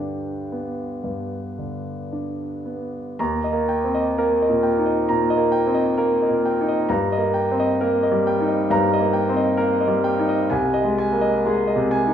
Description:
classical, romantic nocturne for solo piano; 54-68 BPM; 4/4; rubato; G major, Eb major from 3.2 s; A4 = 440 Hz
clear concert grand piano; solo; 0.0-12.1 s; C2 to Bb5; -19 LUFS; equal
wet recital hall reverb, RT60 1.4 s; minimal, uncompressed stereo recording; -18 LUFS; side -9 dB against mid
0.0-3.2 A section; 3.2-12.1 B section
0.0 G; 3.2 Eb; 6.9 Eb/G; 10.5 Ab/C

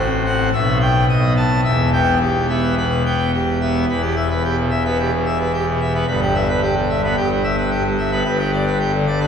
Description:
classical, organ toccata; 110 BPM; 4/4; straight; E minor; A4 = 441 Hz
pipe organ, full organ; solo; 0.0-9.3 s; E1 to A5; -16 LUFS; left 1 dB
wet cathedral reverb, RT60 4.8 s; recorded in a church or concert hall, studio reverb; -16 LUFS; side -7 dB against mid
0.0-3.9 A section; 3.9-9.3 B section
0.0 F#dim/A; 0.5 Em/B; 1.1 B7; 1.6 Em; 6.1 Em/G; 8.3 G

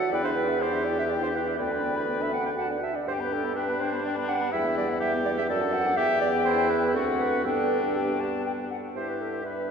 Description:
quick classical-period movement for wind quintet; 122 BPM; 3/4; straight; G major; A4 = 440 Hz
concert flute; melody; 0.0-9.7 s; E5 to B5; -33 LUFS; left 6 dB
clear oboe; second line; 0.0-9.7 s; D4 to B4; -32 LUFS; left 3 dB
dark French horn; accompaniment; 0.0-9.7 s; G3 to F#4; -35 LUFS; left 1 dB
warm clarinet; accompaniment; 0.0-9.7 s; G4 to G5; -28 LUFS; right 4 dB
dark bassoon; bass; 0.1-9.7 s; D2 to G2; -30 LUFS; right 1 dB
wet cathedral reverb, RT60 5.6 s; recorded in a church or concert hall; -24 LUFS; side -6 dB against mid
0.0-9.0 A section
0.1 Em7; 1.6 G/D; 2.6 D; 3.1 G; 4.5 Em; 5.5 D/F#; 6.0 Em; 7.0 D7; 7.5 G

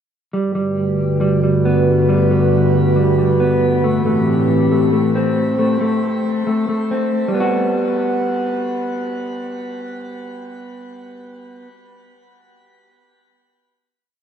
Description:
hip hop, atmospheric cloud-rap; 137 BPM; 4/4; half-time; G major; A4 = 440 Hz
warbly tape-like pad; sustained chords; 0.7-5.6 s; G2 to B4; -17 LUFS; equal; chorus, built-in reverb
mellow electric guitar; arpeggios; 0.3-11.7 s; G3 to F#4; -18 LUFS; equal; digital delay
moderate shimmer reverb, RT60 6.3 s; dark, warm production, nothing above 11.0 kHz; -15 LUFS; side -8 dB against mid
0.3-7.3 breakdown; 7.3-10.8 final chord
0.3 Gmaj7; 3.8 Am7; 7.3 Gmaj7

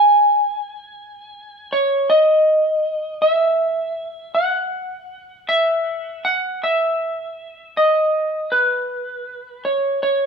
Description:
rock; 53 BPM (dotted quarters); 6/8; straight; A4 = 440 Hz
electric slide guitar; solo; 0.0-10.3 s; B4 to G#5; -17 LUFS; equal
moderate stone room reverb, RT60 1.2 s; band playing live in one room; -16 LUFS; side -5 dB against mid
0.0-6.6 A section; 6.6-10.3 B section

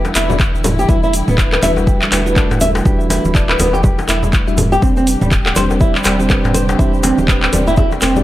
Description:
afro house; 122 BPM; 4/4; swing 59% on 16ths; E minor; A4 = 440 Hz
dark studio string section; sustained chords; 0.0-8.2 s; C3 to G4; -23 LUFS; left 1 dB; vintage 12-bit sampler grit, sidechain pumping
flamenco guitar; arpeggios; 0.0-8.2 s; G3 to E5; -18 LUFS; right 1 dB; sidechain pumping, tape echo
djembe; percussion; 0.0-8.1 s; -24 LUFS; left 3 dB
egg shaker; percussion; 0.0-8.2 s; -29 LUFS; right 3 dB
congas; percussion; 0.1-8.2 s; -22 LUFS; right 1 dB
warm sub bass; bass; 0.2-8.2 s; D1 to E1; -20 LUFS; equal; sidechain pumping
afro-pop drum kit; drums; 0.2-8.1 s; handclaps, hi-hat, toms; -18 LUFS; equal
bell-like tine electric piano; stabs; 0.3-8.2 s; G3 to E5; -21 LUFS; moving between left 7 dB and right 4 dB; auto-pan, sidechain pumping, tape echo
electronic kick drum; drums; 0.4-7.9 s; -14 LUFS; equal
small room ambience; dry, gritty hardware recording; -11 LUFS; side -14 dB against mid
0.0-8.2 A section
0.0 Em7; 4.8 Csus2

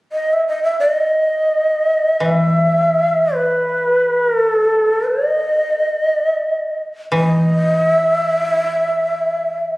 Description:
japanese traditional, Japanese chamber music; free time; A4 = 440 Hz
breathy mellow shakuhachi; melody; 0.1-9.8 s; B4 to E5; -15 LUFS; equal
koto; accompaniment; 2.2-9.8 s; E3; -18 LUFS; equal
moderate concert hall reverb, RT60 2.3 s; recorded on a phone in the room, club reverb; -14 LUFS; side -21 dB against mid
0.0-9.8 A section

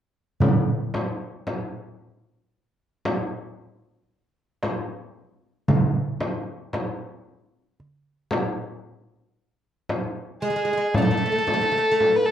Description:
Arabic maqam ensemble; 114 BPM (eighths); 10/8; straight; A4 = 439 Hz
darbuka; percussion; 0.4-10.1 s; -25 LUFS; right 2 dB
frame drum; percussion; 0.4-12.2 s; -25 LUFS; equal
rich violin; melody; 10.4-12.3 s; G#4 to B4; -23 LUFS; equal
oud; second line; 10.4-12.2 s; G#3 to A3; -23 LUFS; equal
moderate studio reverb, RT60 0.5 s; dark, warm production; -22 LUFS; side -10 dB against mid
0.4-10.9 A section; 10.9-12.3 B section

